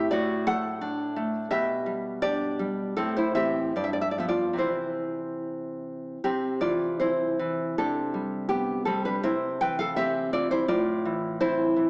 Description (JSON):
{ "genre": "romantic piece for solo classical guitar", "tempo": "71-88 BPM", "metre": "2/4", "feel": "rubato", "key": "C major", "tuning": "A4 = 440 Hz", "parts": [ { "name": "nylon-string guitar", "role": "solo", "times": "0.0-11.9 s", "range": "G2 to G5", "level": "-27 LUFS", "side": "equal", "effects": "none" } ], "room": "wet recital hall reverb, RT60 1.7 s", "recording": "small speaker sound", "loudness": "-28 LUFS", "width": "mono", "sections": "0.0-6.2 A section; 6.2-11.9 B section", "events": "none", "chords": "0.1 D/A; 1.5 G/B; 3.0 Am; 3.8 G7; 4.6 C; 7.8 G/C; 9.2 C; 10.7 Am" }